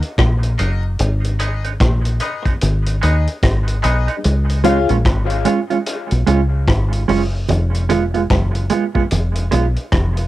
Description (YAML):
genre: dub reggae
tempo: 74 BPM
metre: 4/4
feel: swing 61% on 16ths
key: unclear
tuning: A4 = 435 Hz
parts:
  - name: vintage drum kit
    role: drums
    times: 0.0-10.3 s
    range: hi-hat, kick drum, rim click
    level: -21 LUFS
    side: equal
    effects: cassette tape
  - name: deep dub fingered electric bass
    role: bass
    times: 0.2-10.3 s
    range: F1 to Eb2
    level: -16 LUFS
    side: equal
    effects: none
  - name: congas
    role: percussion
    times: 0.4-1.0, 7.5-10.3 s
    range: none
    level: -26 LUFS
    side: right 6 dB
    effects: none
  - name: mellow electric guitar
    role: accompaniment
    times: 0.6-9.6 s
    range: Gb3 to F4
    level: -20 LUFS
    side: right 6 dB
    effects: high-pass filter, dub echo
  - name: warm baby grand piano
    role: stabs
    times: 0.6-4.9 s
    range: Eb4 to F5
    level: -23 LUFS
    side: left 6 dB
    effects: high-pass filter, dub echo, plate reverb
room: light reverb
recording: home recording on cassette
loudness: -15 LUFS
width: side -15 dB against mid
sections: 0.0-10.3 A section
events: filter sweep 0.0-4.2; part muted 1.0-7.5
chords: 0.0 Ebm; 1.0 Abm; 4.2 Db; 7.5 Fdim